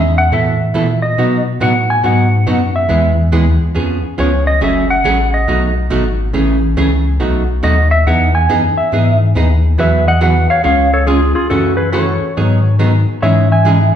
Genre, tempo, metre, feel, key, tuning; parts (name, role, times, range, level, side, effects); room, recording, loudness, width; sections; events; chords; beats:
country, western swing; 140 BPM; 4/4; swing 65% on 8ths; E major; A4 = 440 Hz
clean lap steel guitar; melody; 0.0-14.0 s; E#4 to G#5; -15 LUFS; equal
warm sub bass; bass; 0.0-13.9 s; F#1 to B2; -14 LUFS; left 1 dB
archtop guitar, miked and amplified; accompaniment; 0.3-13.8 s; B2 to A4; -16 LUFS; right 2 dB
wet large studio reverb, RT60 1.3 s; band playing live in one room; -11 LUFS; side -9 dB against mid
0.0-9.8 A section; 9.8-14.0 B section
electric slide guitar solo 0.0-9.8
0.3 Asus2; 1.2 B; 2.9 E; 3.8 C#7/E#; 4.6 F#madd9; 5.5 B7; 6.3 Amaj7; 7.2 B7; 8.1 Emaj7; 9.8 Eadd9; 10.6 C#; 11.5 F#m7; 12.4 G#m7; 13.2 C#madd9/G#
0.32 0.75 | 1.18 1.61 2.04 2.47 | 2.90 3.33 3.76 4.19 | 4.62 5.05 5.48 5.91 | 6.34 6.77 7.20 7.63 | 8.06 8.49 8.93 9.36 | 9.79 10.21 10.64 11.07 | 11.50 11.93 12.36 12.79 | 13.22 13.65